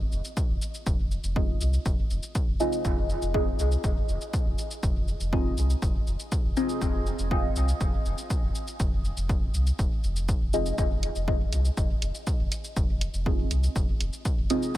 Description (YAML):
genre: dub techno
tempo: 121 BPM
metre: 4/4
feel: straight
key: F minor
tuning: A4 = 440 Hz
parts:
  - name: warm sub bass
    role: bass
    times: 0.0-14.8 s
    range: Eb1 to C2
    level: -28 LUFS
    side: equal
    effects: tube saturation, sidechain pumping
  - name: electronic shaker and hi-hat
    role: drums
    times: 0.1-14.8 s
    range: none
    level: -39 LUFS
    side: equal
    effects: none
  - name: electronic kick drum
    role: drums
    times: 0.4-14.8 s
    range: none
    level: -27 LUFS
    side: equal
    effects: none
  - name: deep mellow chord stab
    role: stabs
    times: 1.4-7.4, 10.5-14.8 s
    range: C4 to Eb5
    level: -31 LUFS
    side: equal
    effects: chorus, phaser, sidechain pumping, dub echo
room: light reverb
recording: none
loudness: -24 LUFS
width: side -15 dB against mid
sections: 0.0-14.8 A section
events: none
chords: 0.0 Fm7